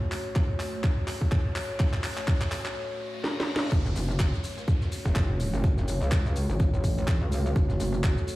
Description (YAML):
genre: bass house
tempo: 125 BPM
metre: 4/4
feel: swing 57% on 16ths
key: F# minor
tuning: A4 = 440 Hz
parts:
  - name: dark analog pad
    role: sustained chords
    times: 0.0-8.4 s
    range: A3 to C#5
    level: -36 LUFS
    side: equal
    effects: chorus, phaser, sidechain pumping
  - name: riser, reverse cymbal and downlifter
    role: sound effects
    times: 0.0-7.6 s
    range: none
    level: -43 LUFS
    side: left 2 dB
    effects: none
  - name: garage drum kit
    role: drums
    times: 0.1-8.4 s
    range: handclaps, hi-hat, shaker, snare drum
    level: -34 LUFS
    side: equal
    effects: none
  - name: electronic kick drum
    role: drums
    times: 0.4-8.1 s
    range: none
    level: -26 LUFS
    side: equal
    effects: none
  - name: metallic wobble bass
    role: bass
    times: 3.7-8.2 s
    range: F#1 to C#2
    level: -27 LUFS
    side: equal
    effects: chorus, tube saturation, sidechain pumping
  - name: vintage brush drum kit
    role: drums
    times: 3.7-8.4 s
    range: hi-hat, snare drum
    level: -47 LUFS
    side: right 1 dB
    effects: none
room: light reverb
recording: played on a big sound system in a bare room, large studio reverb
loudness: -24 LUFS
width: side -18 dB against mid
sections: 0.0-3.7 A section; 3.7-8.4 B section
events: build-up 0.0-3.7; drum fill 0.0-2.8, 3.2-3.7; riser 0.0-3.7; break 2.8-3.7; reverse cymbal 2.8-3.7; drop 3.7-8.4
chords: 0.0 F#m